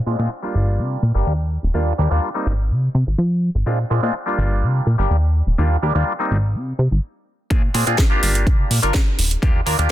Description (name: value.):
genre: filtered disco house.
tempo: 125 BPM.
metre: 4/4.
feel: straight.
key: Eb major.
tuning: A4 = 441 Hz.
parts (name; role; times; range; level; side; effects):
bright clav; accompaniment; 0.1-9.9 s; G3 to Bb4; -23 LUFS; equal; phaser, sidechain pumping, low-pass filter.
plucky analog bass; bass; 0.1-9.9 s; Eb1 to F3; -18 LUFS; equal; sidechain pumping, low-pass filter.
electronic kick drum; drums; 7.5-9.5 s; none; -17 LUFS; equal; none.
house drum kit; drums; 7.5-9.9 s; hi-hat, snare drum; -22 LUFS; right 2 dB; sidechain pumping on hats.
room: little or no reverb.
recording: dense, heavily limited modern master.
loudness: -16 LUFS.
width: side -13 dB against mid.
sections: 0.0-7.5 A section; 7.5-9.9 B section.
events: filter sweep 0.0-7.5; stop 7.0-7.5; drop 7.5-9.9.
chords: 0.0 Bb7; 0.5 Gm7; 1.5 Ebmaj9; 2.5 Ab; 3.7 Bb7; 4.4 Gm7; 5.3 Ebmaj9; 6.3 Ab; 7.5 Bb7; 8.2 Gm7; 9.2 Ebmaj9.